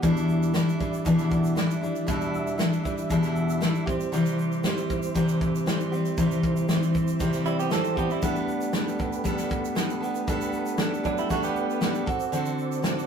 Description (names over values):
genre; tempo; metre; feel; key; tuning
acoustic pop; 117 BPM; 4/4; straight; unclear; A4 = 440 Hz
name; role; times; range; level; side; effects
picked steel-string acoustic guitar; accompaniment; 0.0-13.1 s; E2 to A4; -25 LUFS; left 1 dB; none
tonewheel organ; sustained chords; 0.0-13.1 s; G3 to E5; -34 LUFS; right 5 dB; chorus vibrato, slow rotary speaker
natural country drum kit; drums; 0.0-13.0 s; kick drum, shaker, snare drum; -30 LUFS; right 1 dB; none
egg shaker; percussion; 0.0-13.1 s; none; -45 LUFS; right 8 dB; none
direct-recorded clean electric guitar; second line; 7.5-12.0 s; F#3 to A4; -28 LUFS; right 4 dB; none
room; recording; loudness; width
moderate studio reverb, RT60 0.6 s; rough rehearsal-room recording, warm saturation; -23 LUFS; side -7 dB against mid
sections
0.0-13.1 A section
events
none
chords
0.0 Em7; 3.9 C; 8.2 Gadd9; 12.1 D7